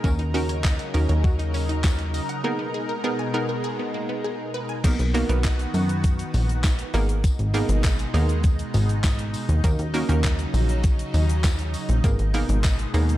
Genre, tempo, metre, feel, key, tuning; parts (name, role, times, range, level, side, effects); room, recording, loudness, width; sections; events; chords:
dance-pop; 100 BPM; 4/4; straight; G# minor; A4 = 441 Hz
analog pluck; accompaniment; 0.0-13.2 s; A#3 to B4; -28 LUFS; right 2 dB; chorus, sidechain pumping
lush unison pad; sustained chords; 0.0-13.2 s; B2 to A#4; -30 LUFS; equal; chorus, phaser, sidechain pumping
wide unison pluck; arpeggios; 0.0-4.8 s; A#3 to G#5; -33 LUFS; left 1 dB; sidechain pumping, tape echo
plucky analog bass; bass; 0.0-13.2 s; G#1 to F#2; -22 LUFS; equal; sidechain pumping
gated 80s digital drum machine; drums; 0.0-13.2 s; crash cymbal, handclaps, hi-hat, kick drum, shaker, snare drum; -24 LUFS; equal; gated reverb, gated reverb snare
tambourine; percussion; 0.0-13.1 s; -43 LUFS; left 9 dB
light reverb; dark, warm production; -20 LUFS; side -14 dB against mid
0.0-4.8 A section; 4.8-13.2 B section
break 2.4-4.8
0.0 D#m7; 2.4 G#madd9; 4.8 Bmaj7; 6.9 G#madd9; 9.6 D#m7; 12.0 G#madd9